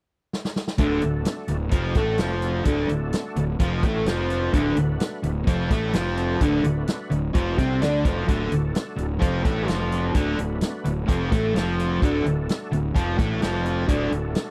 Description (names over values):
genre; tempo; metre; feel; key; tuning
blues rock power trio and southern rock; 128 BPM; 4/4; straight; unclear; A4 = 439 Hz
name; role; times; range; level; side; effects
vintage drum kit; drums; 0.3-14.5 s; hi-hat, kick drum, snare drum; -27 LUFS; equal; none
overdriven tonewheel organ; sustained chords; 0.8-14.5 s; A3 to B5; -38 LUFS; equal; none
overdriven electric guitar; riff; 0.8-14.3 s; D2 to D4; -26 LUFS; equal; none
fuzz fingered electric bass; bass; 0.8-14.3 s; D1 to D2; -30 LUFS; equal; overdrive
room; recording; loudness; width
little or no reverb; dry, close 1970s-style studio recording; -24 LUFS; mono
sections
0.8-14.5 A section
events
drum fill 0.3-0.8; tonewheel organ fill 3.6-4.5, 7.3-8.3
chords
0.0 N.C.; 0.8 D